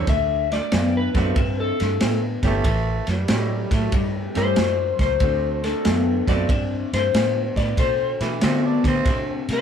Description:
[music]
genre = electric blues shuffle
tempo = 93 BPM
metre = 4/4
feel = swing 67% on 8ths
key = unclear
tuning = A4 = 440 Hz
[part]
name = electric slide guitar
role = melody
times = 0.0-9.6 s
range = A4 to E5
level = -23 LUFS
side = left 5 dB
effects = none
[part]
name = bright upright piano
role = accompaniment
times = 0.0-9.4 s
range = A3 to G4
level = -30 LUFS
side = right 5 dB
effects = none
[part]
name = electric guitar through a small old amp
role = riff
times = 0.0-9.6 s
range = A2 to C4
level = -26 LUFS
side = left 3 dB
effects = phaser
[part]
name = vintage muted fingered electric bass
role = bass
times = 0.0-9.6 s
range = G1 to D3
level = -25 LUFS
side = right 1 dB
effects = none
[part]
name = crunchy breakbeat drum kit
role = drums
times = 0.1-9.6 s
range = kick drum, ride cymbal, snare drum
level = -24 LUFS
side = right 1 dB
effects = none
[part]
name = growling tenor saxophone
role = second line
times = 2.5-3.9, 8.2-9.4 s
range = E3 to D4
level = -28 LUFS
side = right 3 dB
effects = none
[sound]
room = light reverb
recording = band playing live in one room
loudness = -19 LUFS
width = side -8 dB against mid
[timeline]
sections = 0.0-9.6 A section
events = none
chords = 0.1 D7; 2.6 A7; 5.2 D7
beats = | 0.07 0.71 1.36 2.00 | 2.64 3.29 3.93 4.57 | 5.21 5.86 6.50 7.14 | 7.78 8.42 9.06

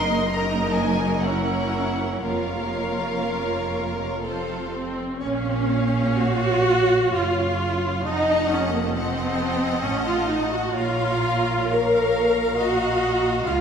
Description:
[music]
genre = classical, slow romantic movement for string orchestra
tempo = 57-70 BPM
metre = 3/4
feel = rubato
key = Bb minor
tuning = A4 = 441 Hz
[part]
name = rich studio violin section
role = melody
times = 0.0-13.6 s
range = F5 to C6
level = -34 LUFS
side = left 3 dB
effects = none
[part]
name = clear studio violin section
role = second line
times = 0.0-13.6 s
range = A4 to Gb5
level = -28 LUFS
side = left 2 dB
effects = none
[part]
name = rich symphonic viola section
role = accompaniment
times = 0.0-13.6 s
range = Bb3 to Bb4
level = -23 LUFS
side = right 1 dB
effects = none
[part]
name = rich studio cello section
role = bass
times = 0.0-13.6 s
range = Db2 to Bb2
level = -29 LUFS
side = right 1 dB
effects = none
[part]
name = rich studio double bass section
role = bass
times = 0.0-13.6 s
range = F1 to Db2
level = -30 LUFS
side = right 2 dB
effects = none
[sound]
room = wet scoring stage reverb, RT60 1.9 s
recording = minimal, uncompressed stereo recording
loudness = -20 LUFS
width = side -7 dB against mid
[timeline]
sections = 0.0-5.2 A section; 5.2-13.6 B section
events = none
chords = 0.0 Ebm/Gb; 1.2 Gb7; 2.2 Bbm/F; 4.2 F; 5.2 Bbm; 8.0 F7b9; 10.7 Bbm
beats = 0.33 1.23 | 2.23 3.26 4.25 | 5.20 6.21 7.13 | 8.04 8.95 9.84 | 10.74 11.70 12.58 | 13.47

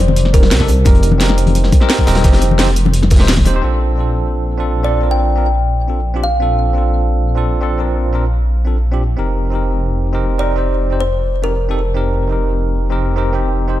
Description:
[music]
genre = liquid drum and bass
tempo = 173 BPM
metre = 4/4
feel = straight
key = Bb major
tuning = A4 = 440 Hz
[part]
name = kalimba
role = melody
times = 0.0-0.8, 4.8-6.6, 10.4-11.9 s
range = Bb4 to G5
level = -22 LUFS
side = equal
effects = ping-pong delay
[part]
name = dark detuned saw bass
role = bass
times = 0.0-13.8 s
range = Eb1 to C2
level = -15 LUFS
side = equal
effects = none
[part]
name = congas and bongos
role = percussion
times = 0.1-3.5 s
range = none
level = -20 LUFS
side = left 5 dB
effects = none
[part]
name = crunchy breakbeat drum kit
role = drums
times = 0.2-3.5 s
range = hi-hat, snare drum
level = -26 LUFS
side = equal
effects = high-pass filter on hats, high-pass filter on snare, high-pass filter on room
[part]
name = drum and bass drum kit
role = drums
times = 0.2-3.5 s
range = hi-hat, snare drum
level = -19 LUFS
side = equal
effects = low-pass filter on hats, low-pass filter on snare, low-pass filter on room
[part]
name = bell-like tine electric piano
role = accompaniment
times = 0.3-13.8 s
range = C4 to C5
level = -20 LUFS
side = equal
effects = fast stereo tremolo, digital delay
[part]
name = electronic kick drum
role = drums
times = 0.3-3.4 s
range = none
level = -12 LUFS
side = equal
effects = none
[sound]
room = studio reverb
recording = dark, warm production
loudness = -12 LUFS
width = side -14 dB against mid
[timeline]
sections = 0.0-3.6 A section; 3.6-13.8 B section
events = drop 0.0-3.6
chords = 0.0 F7sus4; 3.6 Bbmaj9; 9.2 F7sus4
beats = 0.17 0.51 | 0.86 1.21 1.55 1.90 | 2.25 2.59 2.94 3.29 | 3.63 3.98 4.33 4.67 | 5.02 5.37 5.71 6.06 | 6.41 6.75 7.10 7.45 | 7.79 8.14 8.49 8.84 | 9.18 9.53 9.88 10.22 | 10.57 10.92 11.26 11.61 | 11.96 12.30 12.65 13.00 | 13.34 13.69

